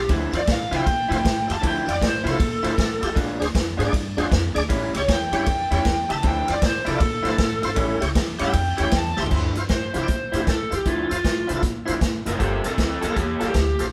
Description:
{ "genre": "electric blues shuffle", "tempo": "156 BPM", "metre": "4/4", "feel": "swing 64% on 8ths", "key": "D minor", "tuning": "A4 = 442 Hz", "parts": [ { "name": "lead guitar through a small cranked amp", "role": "melody", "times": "0.0-13.8 s", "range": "Bb3 to C6", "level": "-28 LUFS", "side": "equal", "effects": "overdrive" }, { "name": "tonewheel organ", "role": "accompaniment", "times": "0.0-13.9 s", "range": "D4 to E5", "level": "-32 LUFS", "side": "equal", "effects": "slow rotary speaker, overdrive, chorus vibrato" }, { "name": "upright bass", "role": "bass", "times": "0.0-13.9 s", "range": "F#1 to C3", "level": "-30 LUFS", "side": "equal", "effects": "none" }, { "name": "electric guitar through a small old amp", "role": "riff", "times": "0.1-13.8 s", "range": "A2 to A4", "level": "-31 LUFS", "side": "equal", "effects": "none" }, { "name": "swinging big-band drum kit", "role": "drums", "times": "0.1-13.9 s", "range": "crash cymbal, hi-hat, kick drum, ride cymbal, snare drum, toms", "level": "-26 LUFS", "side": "equal", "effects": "none" } ], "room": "moderate stone room reverb, RT60 1.1 s", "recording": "band playing live in one room", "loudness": "-22 LUFS", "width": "mono", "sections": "0.0-9.3 A section; 9.3-13.9 B section", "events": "lead electric guitar solo 0.0-9.3; drum fill 9.1", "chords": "0.1 Dm9; 3.2 Bb7; 4.7 A7; 6.2 Dm9; 7.8 A7; 9.3 Dm9; 12.4 Gm9", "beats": "| 0.10 0.48 0.87 1.25 | 1.64 2.02 2.40 2.79 | 3.17 3.56 3.94 4.32 | 4.71 5.09 5.47 5.86 | 6.24 6.63 7.01 7.39 | 7.78 8.16 8.55 8.93 | 9.31 9.70 10.08 10.47 | 10.85 11.24 11.62 12.01 | 12.39 12.78 13.16 13.55" }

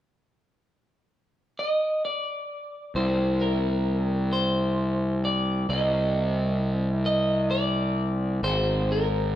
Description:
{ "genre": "post-rock", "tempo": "44 BPM (dotted quarters)", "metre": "6/8", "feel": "straight", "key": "C minor", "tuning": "A4 = 438 Hz", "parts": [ { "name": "electric guitar at the edge of break-up", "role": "melody", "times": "1.6-9.4 s", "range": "Bb4 to Eb5", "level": "-27 LUFS", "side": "equal", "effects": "none" }, { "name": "fuzz picked electric bass", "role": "bass", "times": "3.0-9.4 s", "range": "Ab1 to C2", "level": "-24 LUFS", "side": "equal", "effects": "overdrive" } ], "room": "moderate stone room reverb, RT60 1.2 s", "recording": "band playing live in one room", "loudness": "-23 LUFS", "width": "side -12 dB against mid", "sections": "0.2-2.9 A section; 2.9-9.4 B section", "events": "none", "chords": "0.2 N.C.; 2.9 Cm; 8.4 Abadd9", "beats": "| 0.20 1.57 | 2.94 4.32 | 5.69 7.06 | 8.43" }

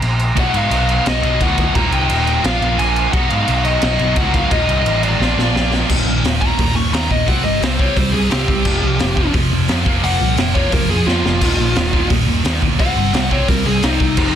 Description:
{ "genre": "punk rock", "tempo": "174 BPM", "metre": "4/4", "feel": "straight", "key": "unclear", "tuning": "A4 = 440 Hz", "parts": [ { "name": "overdriven picked electric bass", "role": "bass", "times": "0.0-14.3 s", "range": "Eb1 to Ab2", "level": "-20 LUFS", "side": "equal", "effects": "none" }, { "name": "raw garage drum kit", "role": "drums", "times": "0.0-14.3 s", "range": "crash cymbal, hi-hat, kick drum, snare drum", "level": "-19 LUFS", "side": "equal", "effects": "none" }, { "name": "high-gain lead guitar", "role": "melody", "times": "0.4-14.4 s", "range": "Eb4 to Db6", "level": "-20 LUFS", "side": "left 2 dB", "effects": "distortion" }, { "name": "high-gain distorted guitar", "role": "riff", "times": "0.4-14.4 s", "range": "Eb2 to F#4", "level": "-21 LUFS", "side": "right 3 dB", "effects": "distortion" }, { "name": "sludgy distorted guitar", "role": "riff", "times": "0.4-14.3 s", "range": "Eb2 to F#4", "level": "-22 LUFS", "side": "equal", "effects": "overdrive" } ], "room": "little or no reverb", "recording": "dense, heavily limited modern master", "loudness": "-13 LUFS", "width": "side -9 dB against mid", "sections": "0.0-5.9 A section; 5.9-14.4 B section", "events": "half time 0.0-5.9; drum fill 5.2-5.9, 11.1-11.4; lead electric guitar solo 5.9-14.4", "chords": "0.4 B; 1.8 Eb; 2.4 Bb; 3.1 B; 4.5 Eb; 5.2 Bb; 5.9 Eb5; 7.3 C5; 8.7 F5; 9.9 Bb5/F; 11.4 Eb5; 12.8 Cm", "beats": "0.03 | 0.37 0.72 1.06 1.41 | 1.75 2.10 2.44 2.79 | 3.13 3.48 3.83 4.17 | 4.51 4.86 5.21 5.55 | 5.90 6.24 6.59 6.93 | 7.28 7.62 7.97 8.31 | 8.66 9.00 9.35 9.69 | 10.04 10.38 10.72 11.07 | 11.41 11.76 12.10 12.45 | 12.79 13.14 13.48 13.83 | 14.17" }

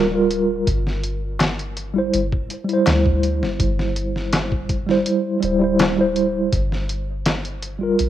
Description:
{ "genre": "trip hop", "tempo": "82 BPM", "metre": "4/4", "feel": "straight", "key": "unclear", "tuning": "A4 = 442 Hz", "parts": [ { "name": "mellow tine electric piano", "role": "accompaniment", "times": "0.0-8.1 s", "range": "G3 to C5", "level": "-20 LUFS", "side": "right 1 dB", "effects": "medium stereo tremolo, tape echo" }, { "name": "soft 808-style bass", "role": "bass", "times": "0.0-8.1 s", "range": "D1 to D2", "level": "-25 LUFS", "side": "equal", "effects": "tube saturation" }, { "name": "trip hop sampler-style drum kit", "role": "drums", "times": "0.3-8.1 s", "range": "hi-hat, kick drum, snare drum", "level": "-23 LUFS", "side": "equal", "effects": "none" }, { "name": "darbuka", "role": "percussion", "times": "1.4-7.4 s", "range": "none", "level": "-27 LUFS", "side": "left 3 dB", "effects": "none" } ], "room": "little or no reverb", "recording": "rough home demo mix", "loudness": "-18 LUFS", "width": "side -12 dB against mid", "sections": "0.0-8.1 A section", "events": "none", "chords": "0.0 Gm7; 0.7 D9sus4; 6.5 Gm7", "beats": "| 0.68 1.41 2.14 2.87 | 3.60 4.33 5.07 5.80 | 6.53 7.26 7.99" }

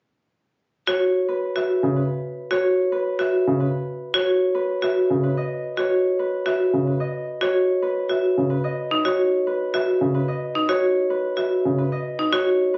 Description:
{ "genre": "classical, minimalist pattern music", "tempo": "110 BPM", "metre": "3/4", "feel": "straight", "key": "unclear", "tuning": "A4 = 439 Hz", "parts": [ { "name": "Celtic harp", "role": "melody", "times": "0.9-12.8 s", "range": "B4 to E5", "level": "-28 LUFS", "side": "equal", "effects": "none" }, { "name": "marimba with hard mallets", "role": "arpeggios", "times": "0.9-12.5 s", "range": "D#4 to F#4", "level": "-24 LUFS", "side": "equal", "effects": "none" }, { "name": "warm grand piano", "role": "accompaniment", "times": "1.8-11.8 s", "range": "C#3", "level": "-26 LUFS", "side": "equal", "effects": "none" } ], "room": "little or no reverb", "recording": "recorded on a phone in the room, studio reverb, nothing above 7.5 kHz", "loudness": "-22 LUFS", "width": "mono", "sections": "0.9-12.8 A section", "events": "none", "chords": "0.9 C#m11", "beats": "| 0.88 1.42 1.97 | 2.51 3.06 3.60 | 4.15 4.69 5.24 | 5.78 6.33 6.88 | 7.42 7.97 8.51 | 9.06 9.60 10.15 | 10.69 11.24 11.78 | 12.33" }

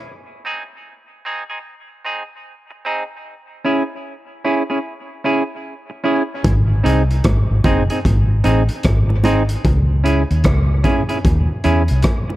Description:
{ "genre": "dub reggae", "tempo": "75 BPM", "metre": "4/4", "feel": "swing 63% on 16ths", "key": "C# harmonic minor", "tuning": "A4 = 440 Hz", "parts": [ { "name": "semi-hollow electric guitar", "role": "accompaniment", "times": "0.4-12.3 s", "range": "B#3 to G#4", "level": "-21 LUFS", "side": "right 1 dB", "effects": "high-pass filter, dub echo" }, { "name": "crunchy breakbeat drum kit", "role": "drums", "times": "6.4-12.3 s", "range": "hi-hat, kick drum, rim click", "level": "-19 LUFS", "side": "equal", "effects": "none" }, { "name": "bongos", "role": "percussion", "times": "6.4-12.4 s", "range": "none", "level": "-26 LUFS", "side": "right 2 dB", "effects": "high-pass filter on perc, dub echo" }, { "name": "vintage muted fingered electric bass", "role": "bass", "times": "6.5-12.0 s", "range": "F#1 to E2", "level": "-16 LUFS", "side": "equal", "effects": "none" } ], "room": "light reverb, small room ambience", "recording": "dark, warm production", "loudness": "-15 LUFS", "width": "side -16 dB against mid", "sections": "0.0-12.4 A section", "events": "break 0.0-6.4", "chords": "0.0 G#; 3.2 C#m; 6.4 G#; 9.6 C#m", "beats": "| 0.05 0.85 1.65 2.45 | 3.25 4.05 4.85 5.65 | 6.45 7.25 8.05 8.85 | 9.65 10.45 11.25 12.05" }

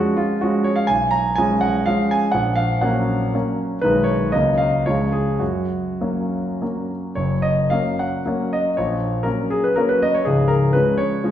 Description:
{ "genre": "classical, romantic triple-time dance for piano with dotted rhythms", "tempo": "96-132 BPM", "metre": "3/4", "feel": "rubato", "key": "F# major", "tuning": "A4 = 439 Hz", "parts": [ { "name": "clear concert grand piano", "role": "solo", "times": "0.0-11.3 s", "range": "C#1 to A#5", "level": "-17 LUFS", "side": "equal", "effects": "none" } ], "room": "wet recital hall reverb, RT60 1.7 s", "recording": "heard from further back in the room", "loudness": "-17 LUFS", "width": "side -10 dB against mid", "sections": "0.0-7.2 A section; 7.2-11.3 A section", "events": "none", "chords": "0.0 C#/E#; 0.9 C#7/B; 2.3 F#/A#; 3.8 G#m/B; 4.3 F#/C#; 4.9 C#; 5.4 F#; 8.8 F#/A#; 10.3 C#", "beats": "0.41 | 0.88 1.36 1.85 | 2.32 2.82 3.34 | 3.82 4.32 4.87 | 5.41 6.00 6.61 | 7.17 7.71 8.27 | 8.77 9.26 9.78 | 10.26 10.74 11.25" }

